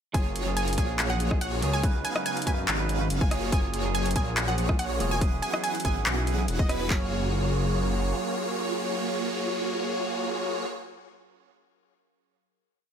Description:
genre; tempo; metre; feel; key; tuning
future bass; 142 BPM; 4/4; half-time; F# major; A4 = 440 Hz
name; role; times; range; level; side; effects
wide unison pluck; melody; 0.1-10.7 s; C#5 to G#5; -34 LUFS; right 2 dB; sidechain pumping, dub echo
clean electric guitar; accompaniment; 0.1-10.7 s; F#3 to E#5; -35 LUFS; right 4 dB; sidechain pumping, ping-pong delay
airy breathy pad; sustained chords; 0.1-10.7 s; C#3 to E#5; -40 LUFS; equal; none
airy dreamy lead; arpeggios; 0.1-10.7 s; B4 to F#5; -36 LUFS; left 1 dB; chorus, cassette tape, sidechain pumping
supersaw chords; riff; 0.1-10.7 s; A#3 to F#5; -32 LUFS; right 1 dB; phaser, sidechain pumping, ping-pong delay
wide detuned saw bass; bass; 0.1-8.1 s; E1 to F#2; -29 LUFS; equal; chorus, sidechain pumping
big-room dance drum kit; drums; 0.1-6.8 s; handclaps, hi-hat, rim click; -30 LUFS; left 1 dB; overdrive
trap drum kit; drums; 0.1-7.0 s; handclaps, kick drum; -26 LUFS; equal; none
room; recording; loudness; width
light reverb, digital ambience; none; -24 LUFS; side -8 dB against mid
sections
0.1-6.9 drop; 6.9-10.3 final chord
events
drop 0.1-6.9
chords
0.1 F#maj9; 1.8 C#9sus4; 3.3 F#maj9; 5.2 E69; 6.9 F#maj9

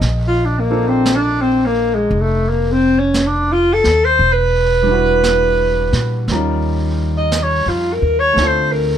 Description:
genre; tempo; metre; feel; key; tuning
jazz ballad; 57 BPM; 4/4; swing 66% on 8ths; unclear; A4 = 440 Hz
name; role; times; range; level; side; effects
warm baby grand piano; accompaniment; 0.0-9.0 s; G3 to Eb5; -24 LUFS; right 1 dB; none
upright bass; bass; 0.0-9.0 s; E1 to Bb2; -19 LUFS; equal; none
jazz brush drum kit; drums; 0.0-9.0 s; brushed snare drum, hi-hat, snare drum; -26 LUFS; right 3 dB; none
mellow alto saxophone; melody; 0.3-9.0 s; Ab3 to Eb5; -14 LUFS; equal; none
room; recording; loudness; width
light reverb; none; -13 LUFS; side -9 dB against mid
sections
0.0-9.0 A section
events
alto saxophone solo 0.0-9.0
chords
0.0 Bbmaj7; 4.2 Em7; 6.3 Eb9; 8.4 Dm7

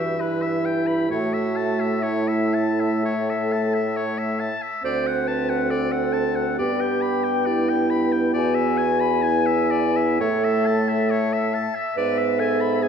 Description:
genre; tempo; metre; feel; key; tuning
classical, slow romantic movement for wind quintet; 56-71 BPM; 4/4; rubato; unclear; A4 = 440 Hz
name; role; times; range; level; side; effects
mellow concert flute; melody; 0.0-12.9 s; E5 to G#5; -28 LUFS; left 10 dB; none
bright oboe; second line; 0.0-12.9 s; B4 to B5; -28 LUFS; left 3 dB; none
dark clarinet; accompaniment; 0.0-12.9 s; E4 to C5; -24 LUFS; right 4 dB; none
warm French horn; accompaniment; 0.0-12.9 s; E3 to C4; -27 LUFS; equal; none
mellow bassoon; bass; 0.0-12.9 s; D2 to A2; -26 LUFS; right 1 dB; none
room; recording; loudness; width
wet scoring stage reverb, RT60 1.5 s; recorded in a church or concert hall; -20 LUFS; side -7 dB against mid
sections
0.0-12.9 A section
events
none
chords
0.0 Em/G; 1.1 A; 4.8 D7; 6.6 G; 8.3 E7; 10.2 A; 12.0 E7/G#

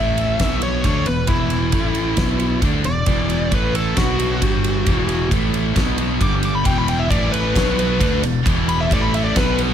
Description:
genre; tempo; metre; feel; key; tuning
hard rock; 134 BPM; 4/4; straight; unclear; A4 = 440 Hz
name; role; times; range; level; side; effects
smooth overdriven lead guitar; melody; 0.0-9.6 s; E4 to D6; -23 LUFS; left 1 dB; none
overdriven electric guitar; riff; 0.0-9.7 s; E2 to D4; -24 LUFS; left 12 dB; none
sludgy distorted guitar; riff; 0.0-9.7 s; E2 to D4; -24 LUFS; right 10 dB; overdrive
fingered electric bass; bass; 0.0-9.7 s; E1 to D2; -23 LUFS; equal; none
huge arena drum kit; drums; 0.2-9.7 s; kick drum, ride cymbal, snare drum; -21 LUFS; equal; none
heavy high-gain guitar; riff; 6.6-9.7 s; E2 to D4; -27 LUFS; left 1 dB; distortion
room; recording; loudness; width
light reverb, studio reverb; none; -16 LUFS; side -9 dB against mid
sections
0.0-9.7 A section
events
lead electric guitar solo 0.0-9.7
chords
0.4 B5; 0.8 E5; 1.7 A5; 2.2 B5; 2.6 E5; 3.5 A5; 4.0 B5; 4.4 G5; 4.9 E5; 5.3 A5; 5.8 B5; 6.2 G5; 6.7 E5; 7.1 A5; 7.6 B5; 8.0 E5; 8.9 A5

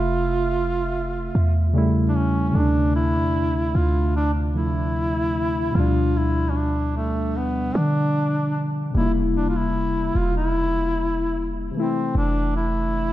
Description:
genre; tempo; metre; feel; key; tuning
contemporary R&B; 75 BPM; 4/4; straight; D minor; A4 = 440 Hz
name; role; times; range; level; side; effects
mellow duduk; melody; 0.0-13.1 s; A3 to F4; -25 LUFS; equal; analog delay
muted felt-like synth keys; accompaniment; 0.0-13.1 s; B2 to E5; -25 LUFS; left 1 dB; chorus
clean 808-style bass; bass; 0.0-13.1 s; E1 to D3; -23 LUFS; equal; none
room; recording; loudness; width
moderate lush hall reverb, RT60 1.6 s, small room ambience; dreamy mix soaked in reverb; -20 LUFS; side -14 dB against mid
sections
0.0-2.5 A section; 2.5-13.1 B section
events
none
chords
0.0 Fmaj7; 1.7 A7; 2.5 Dm7; 5.7 G7/D; 8.9 C7/E; 11.7 Fmaj7

